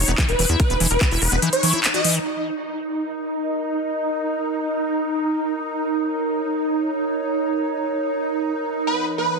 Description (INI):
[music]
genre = psychedelic trance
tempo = free time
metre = none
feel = none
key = unclear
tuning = A4 = 441 Hz
[part]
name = swarming rave lead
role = melody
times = 0.0-2.1, 8.9-9.4 s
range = B4 to Eb5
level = -24 LUFS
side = equal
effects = chorus, phaser, sidechain pumping, dub echo
[part]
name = evolving wavetable pad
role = sustained chords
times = 0.0-9.4 s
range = Eb4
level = -24 LUFS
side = right 2 dB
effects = ensemble chorus, built-in reverb, sidechain pumping
[part]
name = tight sequencer bass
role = bass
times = 0.0-1.4 s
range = E1 to E2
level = -22 LUFS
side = equal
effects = tube saturation
[part]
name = liquid acid bass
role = riff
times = 0.1-2.2 s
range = Eb3 to Gb4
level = -25 LUFS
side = equal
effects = chorus, auto-pan, cassette tape, sidechain pumping, dub echo
[part]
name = drum and bass drum kit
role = drums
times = 0.1-2.2 s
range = handclaps, hi-hat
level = -21 LUFS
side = left 2 dB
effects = low-pass filter on snare, studio reverb, low-pass filter on hats
[part]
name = electronic kick drum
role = drums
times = 0.2-1.1 s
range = none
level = -19 LUFS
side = equal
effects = studio reverb
[part]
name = warbly tape-like pad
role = texture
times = 2.8-9.4 s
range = E3 to Gb5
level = -26 LUFS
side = right 1 dB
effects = chorus, built-in reverb, sidechain pumping
[sound]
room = moderate plate reverb, RT60 1.5 s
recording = dense, heavily limited modern master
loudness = -19 LUFS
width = side -4 dB against mid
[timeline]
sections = 0.0-2.3 A section; 2.3-9.4 B section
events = drop 0.0-2.3; band accent 1.8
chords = 0.0 E5; 2.3 Eb5